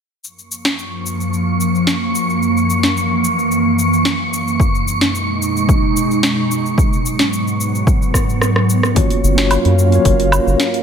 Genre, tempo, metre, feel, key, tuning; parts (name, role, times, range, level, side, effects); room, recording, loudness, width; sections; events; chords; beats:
sunset chillout; 110 BPM; 4/4; straight; F# major; A4 = 440 Hz
ethereal airy pad; sustained chords; 0.9-10.8 s; F#2 to E#5; -17 LUFS; right 1 dB; ensemble chorus, built-in reverb
smooth R&B drum kit; drums; 0.2-10.8 s; cabasa, hi-hat, rim click, snare drum, woodblock; -20 LUFS; equal; overdrive
wind-like tuned noise texture; texture; 0.8-9.0 s; C#6; -23 LUFS; equal; built-in reverb
electronic kick drum; drums; 4.6-10.2 s; -15 LUFS; equal; overdrive
mellow tine electric piano; accompaniment; 8.9-10.8 s; A#3 to C#5; -16 LUFS; moving between left 10 dB and right 1 dB; medium stereo tremolo, auto-pan, digital delay
congas; percussion; 9.0-9.1 s; -22 LUFS; left 3 dB
round analog bass; bass; 9.2-10.6 s; F#1 to F#2; -14 LUFS; equal
moderate lush hall reverb, RT60 2.0 s; -13 LUFS; side -7 dB against mid
0.2-9.0 A section; 9.0-10.8 B section
drum fill 8.1-9.0; kick drops out 8.4-9.0
0.2 F#maj7; 2.4 F#7; 4.6 B6; 6.8 G#m7; 9.0 F#maj7
| 0.23 0.78 1.32 1.87 | 2.42 2.96 3.51 4.05 | 4.60 5.14 5.69 6.23 | 6.78 7.33 7.87 8.42 | 8.96 9.51 10.05 10.60